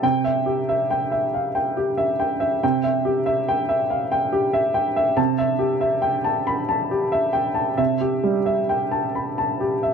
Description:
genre	neoclassical minimalist piano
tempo	69 BPM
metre	3/4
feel	rubato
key	C major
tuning	A4 = 441 Hz
part	warm upright piano	solo	0.0-9.9 s	C3 to B5	-19 LUFS	equal	none
room	light reverb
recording	none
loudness	-19 LUFS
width	side -6 dB against mid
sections	0.0-9.9 A section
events	none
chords	0.0 C; 5.2 Am7/C

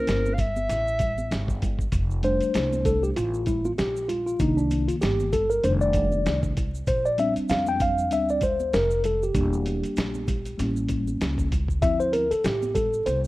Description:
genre	hip hop, jazz-hop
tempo	97 BPM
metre	4/4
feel	swing 57% on 16ths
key	F major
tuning	A4 = 440 Hz
part	mellow clarinet	melody	0.0-1.6 s	Bb4 to F5	-26 LUFS	equal	none
part	mellow tine electric piano	accompaniment	0.0-13.2 s	Eb3 to G5	-24 LUFS	left 1 dB	slow stereo tremolo
part	upright bass	bass	0.1-13.3 s	E1 to F2	-28 LUFS	equal	none
part	dusty soul sampler-style drum kit	drums	0.1-13.2 s	hi-hat, kick drum, snare drum	-29 LUFS	equal	none
part	maracas and congas	percussion	0.1-13.3 s	none	-38 LUFS	right 3 dB	none
room	small room ambience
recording	rough home demo mix, vinyl crackle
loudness	-22 LUFS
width	side -18 dB against mid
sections	0.0-1.9 A section; 1.9-13.3 B section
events	tine electric piano solo 1.9-13.3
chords	0.0 C7b9; 1.9 F69; 4.4 Cm9; 5.6 F13; 6.9 Bb69; 9.4 Em7b5; 10.6 A7b9; 11.8 Dm9

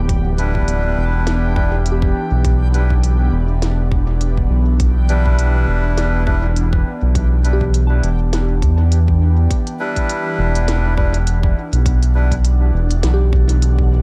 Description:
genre	ambient dub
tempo	102 BPM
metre	4/4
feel	swing 56% on 16ths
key	E minor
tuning	A4 = 440 Hz
part	airy breathy pad	sustained chords	0.0-14.0 s	E3 to F#5	-28 LUFS	equal	chorus, phaser
part	round analog bass	bass	0.0-14.0 s	D1 to E2	-17 LUFS	equal	tube saturation
part	backwards swelling texture	texture	0.0-9.5 s	G4	-36 LUFS	equal	built-in reverb
part	electronic kick drum	drums	0.1-13.9 s	none	-22 LUFS	equal	small room reverb
part	organic electronic drum kit	drums	0.1-13.8 s	hi-hat, snare drum	-31 LUFS	equal	small room reverb, dub echo
part	melodica	stabs	0.4-12.4 s	G3 to B4	-27 LUFS	equal	dub echo
part	soft synth bell	arpeggios	1.1-14.0 s	G4 to A5	-32 LUFS	equal	chorus, phaser, dub echo
room	little or no reverb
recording	echo-heavy mix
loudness	-16 LUFS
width	mono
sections	0.0-9.5 A section; 9.5-14.0 B section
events	none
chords	0.0 Em7

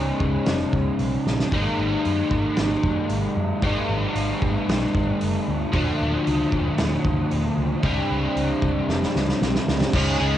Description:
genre	rock, shoegaze and dream pop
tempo	114 BPM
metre	4/4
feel	straight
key	unclear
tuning	A4 = 440 Hz
part	overdriven electric guitar	riff	0.0-10.4 s	Eb2 to Ab4	-22 LUFS	equal	analog chorus, cassette tape
part	vintage muted fingered electric bass	bass	0.0-10.4 s	Eb1 to Gb2	-27 LUFS	equal	none
part	loose indie drum kit	drums	0.2-10.1 s	crash cymbal, hi-hat, kick drum, snare drum	-26 LUFS	equal	cassette tape
room	light reverb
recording	home recording on cassette, nothing above 10.9 kHz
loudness	-20 LUFS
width	side -11 dB against mid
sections	0.0-9.9 A section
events	drum fill 1.3, 8.9-9.9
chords	0.0 Dbsus2; 1.5 Absus2; 5.7 Ebm; 7.8 Dbsus2

